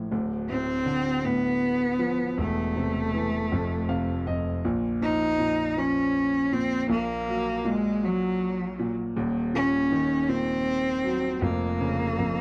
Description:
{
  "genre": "pop",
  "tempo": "53 BPM (dotted quarters)",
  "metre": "6/8",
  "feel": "straight",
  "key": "Bb minor from 4.6 s",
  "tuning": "A4 = 440 Hz",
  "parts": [
    { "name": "clear grand piano", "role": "accompaniment", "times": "0.0-12.4 s", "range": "D1 to F5", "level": "-30 LUFS", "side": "equal", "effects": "none" },
    { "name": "clear cello", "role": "melody", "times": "0.5-12.4 s", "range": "Gb3 to Eb4", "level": "-28 LUFS", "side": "equal", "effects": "none" }
  ],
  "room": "light reverb",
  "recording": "dry, close 1970s-style studio recording",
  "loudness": "-26 LUFS",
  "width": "mono",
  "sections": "0.0-4.6 A section; 4.6-12.4 A section",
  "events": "grand piano fill 3.5-4.6",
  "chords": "0.1 Dm; 2.4 Am/E; 3.5 F; 4.6 Bbm; 6.9 Gb/Bb; 9.2 Ebm; 11.4 Bbm/F",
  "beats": "| 0.12 1.24 | 2.37 3.50 | 4.63 5.76 | 6.89 8.02 | 9.15 10.29 | 11.42"
}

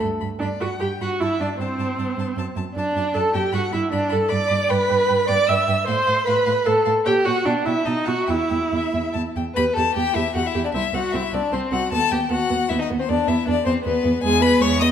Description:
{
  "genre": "quick classical-period movement for string quartet",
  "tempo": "153 BPM",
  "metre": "3/4",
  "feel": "rubato",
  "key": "G major, E minor from 4.7 s",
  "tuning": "A4 = 440 Hz",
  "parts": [
    { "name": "rich violin", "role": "melody", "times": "0.0-14.9 s", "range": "B4 to D#6", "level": "-27 LUFS", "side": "left 8 dB", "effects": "none" },
    { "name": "warm cello", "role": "bass", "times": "0.0-14.9 s", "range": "C2 to B2", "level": "-25 LUFS", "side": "right 3 dB", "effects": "none" },
    { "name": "rich violin", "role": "second line", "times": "0.4-14.9 s", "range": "B3 to E6", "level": "-26 LUFS", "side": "left 2 dB", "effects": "none" },
    { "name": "rich viola", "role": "accompaniment", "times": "0.4-14.9 s", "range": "G#3 to E5", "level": "-22 LUFS", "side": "right 2 dB", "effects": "none" }
  ],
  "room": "wet scoring stage reverb, RT60 1.9 s",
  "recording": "none",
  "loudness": "-18 LUFS",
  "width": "side -8 dB against mid",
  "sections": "0.0-9.6 A section; 9.6-14.9 B section",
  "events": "none",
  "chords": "0.0 G; 1.2 Am7/G; 2.4 D/F#; 3.5 G; 4.7 Em/G; 5.9 F/A; 7.1 A#m6; 7.5 E5/B; 7.9 B; 8.3 N.C.; 9.6 Em; 10.7 D9/C; 11.9 B/D#; 13.1 E5; 14.2 E",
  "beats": "| 0.01 0.41 0.80 | 1.20 1.59 1.98 | 2.37 2.76 3.15 | 3.54 3.92 4.31 | 4.70 5.09 5.48 | 5.88 6.27 6.66 | 7.06 7.46 7.86 | 8.29 8.72 9.14 | 9.56 9.95 10.35 | 10.74 11.13 11.52 | 11.91 12.30 12.70 | 13.09 13.47 13.86 | 14.24 14.62"
}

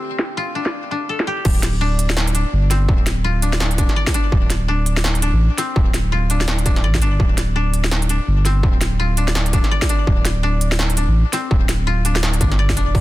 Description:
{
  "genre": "half-time drum and bass",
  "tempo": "167 BPM",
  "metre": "4/4",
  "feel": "swing 60% on 16ths, half-time",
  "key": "D minor",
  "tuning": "A4 = 440 Hz",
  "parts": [
    { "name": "dark analog pad", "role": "sustained chords", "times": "0.0-1.4 s", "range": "D4 to G5", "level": "-35 LUFS", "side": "right 4 dB", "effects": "chorus, vintage 12-bit sampler grit, sidechain pumping" },
    { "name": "koto", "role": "arpeggios", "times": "0.0-13.0 s", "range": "C4 to D5", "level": "-24 LUFS", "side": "left 3 dB", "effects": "ping-pong delay" },
    { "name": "industrial drum kit", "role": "drums", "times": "0.2-13.0 s", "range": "crash cymbal, hi-hat, snare drum", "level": "-23 LUFS", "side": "equal", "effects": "overdrive, low-pass filter on snare, studio reverb, low-pass filter on hats, low-pass filter on cymbals" },
    { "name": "saturated sub bass", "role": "bass", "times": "1.5-13.0 s", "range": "D1 to A1", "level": "-18 LUFS", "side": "equal", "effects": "none" },
    { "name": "electronic kick drum", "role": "drums", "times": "1.5-13.0 s", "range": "none", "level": "-18 LUFS", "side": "equal", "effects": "distortion, overdrive, studio reverb" }
  ],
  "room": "digital ambience",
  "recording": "dense, heavily limited modern master",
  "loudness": "-15 LUFS",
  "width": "side -16 dB against mid",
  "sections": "0.0-1.4 A section; 1.4-13.0 B section",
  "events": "filter sweep on koto 0.0-1.4; drop 1.4-13.0",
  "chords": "0.0 Dm",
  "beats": "| 0.01 0.37 0.73 1.09 | 1.45 1.81 2.17 2.53 | 2.89 3.25 3.60 3.96 | 4.32 4.68 5.04 5.40 | 5.76 6.12 6.48 6.84 | 7.20 7.56 7.92 8.28 | 8.63 8.99 9.35 9.71 | 10.07 10.43 10.79 11.15 | 11.51 11.87 12.23 12.59 | 12.95"
}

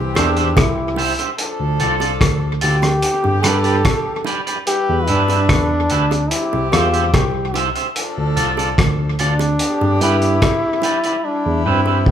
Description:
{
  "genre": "roots reggae",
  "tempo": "73 BPM",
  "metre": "4/4",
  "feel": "straight",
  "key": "D dorian",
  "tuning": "A4 = 440 Hz",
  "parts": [
    { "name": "warm horn section", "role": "second line", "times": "0.0-12.1 s", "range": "D3 to B4", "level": "-24 LUFS", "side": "equal", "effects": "none" },
    { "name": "mellow tine electric piano", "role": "bass", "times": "0.0-12.1 s", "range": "C2 to G2", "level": "-19 LUFS", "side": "equal", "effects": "medium stereo tremolo" },
    { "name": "clear trombone", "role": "melody", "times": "0.2-12.1 s", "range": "C4 to A4", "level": "-20 LUFS", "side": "left 1 dB", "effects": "none" },
    { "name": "electric guitar at the edge of break-up", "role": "accompaniment", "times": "0.2-12.0 s", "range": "F4 to E5", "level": "-22 LUFS", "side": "right 4 dB", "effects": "none" },
    { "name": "cloth-damped thuddy drum kit", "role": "drums", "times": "0.2-12.1 s", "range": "hi-hat, kick drum, rim click", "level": "-19 LUFS", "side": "equal", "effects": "tape echo" },
    { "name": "bongos", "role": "percussion", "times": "0.2-12.0 s", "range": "none", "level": "-29 LUFS", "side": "right 4 dB", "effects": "none" }
  ],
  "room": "moderate large studio reverb, RT60 0.9 s",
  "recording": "band playing live in one room",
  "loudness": "-15 LUFS",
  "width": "side -9 dB against mid",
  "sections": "0.0-12.1 A section",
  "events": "drum fill 11.2-12.1",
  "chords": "0.0 C; 1.4 Dm; 3.0 G; 4.7 Em; 6.3 C; 8.0 Dm; 9.6 G; 11.2 Em",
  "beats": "0.57 | 1.39 2.21 3.03 3.85 | 4.67 5.49 6.32 7.14 | 7.96 8.78 9.60 10.42 | 11.24 12.06"
}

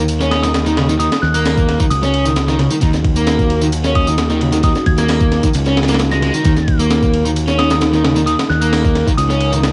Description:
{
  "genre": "breakbeat, breaks",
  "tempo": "132 BPM",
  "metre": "4/4",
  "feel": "straight",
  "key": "Eb minor",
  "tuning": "A4 = 440 Hz",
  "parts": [
    { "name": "deep dark ambient pad", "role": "sustained chords", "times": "1.2-9.7 s", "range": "Bb3 to Bb4", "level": "-26 LUFS", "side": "equal", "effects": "none" },
    { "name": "fuzz fingered electric bass", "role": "bass", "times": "0.0-9.7 s", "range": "Db2 to Eb2", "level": "-20 LUFS", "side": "equal", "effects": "overdrive" },
    { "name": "breakbeat sampler-style drum kit", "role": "drums", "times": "0.1-9.7 s", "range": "hi-hat, kick drum, ride cymbal, snare drum", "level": "-20 LUFS", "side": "equal", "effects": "small room ambience, cassette tape" },
    { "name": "tambourine", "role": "drums", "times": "0.1-9.7 s", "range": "none", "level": "-32 LUFS", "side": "equal", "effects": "overdrive, small room ambience, cassette tape" },
    { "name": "crunchy overdriven guitar", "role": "riff", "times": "0.2-9.6 s", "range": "Db3 to Db4", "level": "-20 LUFS", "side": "equal", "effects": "tube saturation, analog delay" },
    { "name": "glassy synth bell", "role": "melody", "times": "0.3-9.6 s", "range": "Eb6 to Bb6", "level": "-25 LUFS", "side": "equal", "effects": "chorus, old record sound, vintage 12-bit sampler grit, cassette tape, analog delay" }
  ],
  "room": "light reverb",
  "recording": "home recording on cassette, nothing above 10.6 kHz",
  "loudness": "-15 LUFS",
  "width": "mono",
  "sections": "0.0-9.7 A section",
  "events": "none",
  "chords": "0.0 Ebm",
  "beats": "0.09 0.55 | 1.00 1.45 1.91 2.36 | 2.82 3.27 3.73 4.18 | 4.64 5.09 5.54 6.00 | 6.45 6.91 7.36 7.82 | 8.27 8.73 9.18 9.64"
}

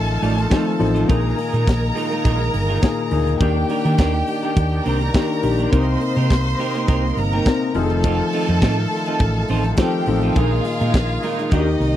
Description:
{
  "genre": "disco",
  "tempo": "104 BPM",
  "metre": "4/4",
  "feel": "straight",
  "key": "unclear",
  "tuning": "A4 = 438 Hz",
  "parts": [
    { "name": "clear studio violin section", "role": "second line", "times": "0.0-12.0 s", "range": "Eb4 to C6", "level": "-26 LUFS", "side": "equal", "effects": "none" },
    { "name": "dark concert grand piano", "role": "accompaniment", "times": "0.0-12.0 s", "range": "Bb2 to Bb4", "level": "-24 LUFS", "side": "left 5 dB", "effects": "none" },
    { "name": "overdriven tonewheel organ", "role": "sustained chords", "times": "0.0-12.0 s", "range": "C3 to Ab4", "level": "-26 LUFS", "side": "right 1 dB", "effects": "chorus vibrato, slow rotary speaker" },
    { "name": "hollow-body short-scale fingered electric bass", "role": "bass", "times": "0.0-12.0 s", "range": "F1 to Eb3", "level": "-20 LUFS", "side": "equal", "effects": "none" },
    { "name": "semi-hollow electric guitar", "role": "accompaniment", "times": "0.1-11.8 s", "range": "F3 to D5", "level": "-26 LUFS", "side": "right 5 dB", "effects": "none" },
    { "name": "tight funk drum kit", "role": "drums", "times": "0.2-12.0 s", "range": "hi-hat, kick drum, snare drum", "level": "-17 LUFS", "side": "equal", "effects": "none" }
  ],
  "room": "little or no reverb",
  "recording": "dry, close 1970s-style studio recording",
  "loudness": "-16 LUFS",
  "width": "side -12 dB against mid",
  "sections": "0.0-12.0 A section",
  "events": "none",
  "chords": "0.0 F7; 1.1 Bb7sus4; 3.4 Ebmaj7; 5.7 Cm7; 7.8 F7; 10.4 Bb7sus4",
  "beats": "0.52 | 1.09 1.67 2.25 2.83 | 3.41 3.99 4.57 5.15 | 5.73 6.31 6.89 7.46 | 8.04 8.62 9.20 9.78 | 10.36 10.94 11.52"
}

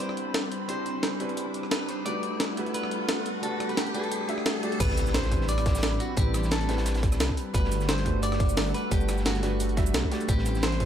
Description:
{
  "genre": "liquid drum and bass",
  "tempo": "175 BPM",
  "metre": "4/4",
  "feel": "swing 53% on 16ths",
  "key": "A dorian",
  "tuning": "A4 = 439 Hz",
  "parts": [
    { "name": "clean electric guitar", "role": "melody", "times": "0.0-10.9 s", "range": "F#4 to D5", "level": "-34 LUFS", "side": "equal", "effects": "tape echo" },
    { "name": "clear baby grand piano", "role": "accompaniment", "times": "0.0-10.9 s", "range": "G3 to F#5", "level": "-33 LUFS", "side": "right 1 dB", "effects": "none" },
    { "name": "airy breathy pad", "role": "sustained chords", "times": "0.0-10.9 s", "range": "G3 to B5", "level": "-36 LUFS", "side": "left 1 dB", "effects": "chorus, sidechain pumping" },
    { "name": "dark detuned saw bass", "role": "bass", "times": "0.0-10.9 s", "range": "G1 to C2", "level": "-28 LUFS", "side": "equal", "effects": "tube saturation, high-pass filter" },
    { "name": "breakbeat sampler-style drum kit", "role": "drums", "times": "0.0-10.9 s", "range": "crash cymbal, hi-hat, rim click, shaker, snare drum", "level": "-30 LUFS", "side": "equal", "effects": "none" },
    { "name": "riser and impact", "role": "sound effects", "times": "0.0-6.2 s", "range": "none", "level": "-36 LUFS", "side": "equal", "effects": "none" },
    { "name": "crunchy breakbeat drum kit", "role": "drums", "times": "4.8-10.9 s", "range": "hi-hat, snare drum", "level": "-39 LUFS", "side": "equal", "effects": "high-pass filter on hats, high-pass filter on snare, high-pass filter on room" },
    { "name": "electronic kick drum", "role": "drums", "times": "4.8-10.9 s", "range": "none", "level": "-27 LUFS", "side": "equal", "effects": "none" }
  ],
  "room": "light reverb",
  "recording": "none",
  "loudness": "-24 LUFS",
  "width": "side -9 dB against mid",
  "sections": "0.0-4.8 A section; 4.8-10.9 B section",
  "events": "build-up 0.0-4.8; riser 0.0-4.8; drop 4.8-10.9; impact 4.8-6.2",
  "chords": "0.0 Am11; 2.1 Gmaj9; 4.8 Am11; 7.5 Gmaj9; 10.3 Am11",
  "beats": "0.00 0.34 | 0.69 1.03 1.37 1.72 | 2.06 2.40 2.74 3.09 | 3.43 3.77 4.12 4.46 | 4.80 5.14 5.49 5.83 | 6.17 6.52 6.86 7.20 | 7.54 7.89 8.23 8.57 | 8.92 9.26 9.60 9.94 | 10.29 10.63"
}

